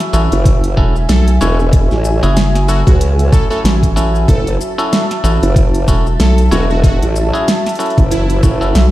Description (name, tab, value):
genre	glitch hop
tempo	94 BPM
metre	4/4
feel	swing 57% on 16ths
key	F# minor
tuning	A4 = 442 Hz
part	dark analog pad	sustained chords	0.0-8.9 s	F#4 to A5	-22 LUFS	right 1 dB	chorus, sidechain pumping
part	pop drum kit	drums	0.0-8.9 s	hi-hat, shaker, snare drum	-19 LUFS	equal	none
part	bright clav	stabs	0.1-8.9 s	C#4 to C#5	-20 LUFS	equal	sidechain pumping, tape echo
part	rubbery square bass	bass	0.1-8.9 s	E1 to B1	-12 LUFS	equal	none
part	formant-sweep wobble bass	bass	0.3-8.7 s	E1 to C#2	-14 LUFS	equal	chorus, tube saturation
part	electronic kick drum	drums	0.5-8.6 s	none	-11 LUFS	equal	none
part	plucky unison lead	melody	1.1-8.6 s	E4 to A4	-23 LUFS	equal	tape echo
room	light reverb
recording	played on a big sound system in a bare room, stone room reverb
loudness	-10 LUFS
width	side -15 dB against mid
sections	0.0-8.9 A section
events	none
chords	0.0 F#m7